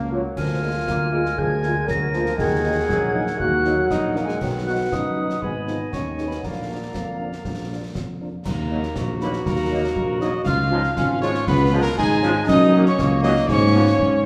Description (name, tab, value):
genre	military-style march for wind band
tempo	119 BPM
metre	2/4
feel	straight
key	Eb minor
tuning	A4 = 440 Hz
part	warm woodwind section	second line	0.0-14.2 s	Bb3 to Ab5	-31 LUFS	equal	none
part	clear trombone section	sustained chords	0.0-13.8 s	D3 to Cb4	-34 LUFS	equal	none
part	dark tuba	bass	0.0-14.3 s	Ab1 to Ab2	-26 LUFS	equal	none
part	mellow cornet	melody	0.1-14.3 s	Ab4 to F5	-30 LUFS	equal	none
part	mellow French horn section	accompaniment	0.1-13.8 s	F3 to Gb4	-34 LUFS	equal	none
part	clear euphonium	second line	0.4-14.3 s	F#3 to Bb4	-28 LUFS	equal	none
part	hollow piccolo	second line	0.4-14.2 s	F#5 to Bb6	-30 LUFS	equal	none
part	concert snare drum, clash cymbals and concert bass drum	drums	0.4-14.2 s	none	-32 LUFS	equal	none
room	wet recital hall reverb, RT60 1.6 s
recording	recorded in a church or concert hall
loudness	-21 LUFS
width	mono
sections	0.0-8.5 A section; 8.5-14.3 B section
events	none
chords	0.4 Bb7/D; 2.4 Ebm; 4.4 B; 5.4 Abm; 6.4 Bb; 8.5 Ebm; 10.5 Db; 12.5 Gb; 13.5 Fdim/Ab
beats	| 0.37 0.88 | 1.38 1.89 | 2.39 2.90 | 3.40 3.91 | 4.41 4.92 | 5.42 5.93 | 6.43 6.94 | 7.44 7.95 | 8.45 8.96 | 9.46 9.96 | 10.47 10.97 | 11.47 11.98 | 12.48 12.99 | 13.49 13.99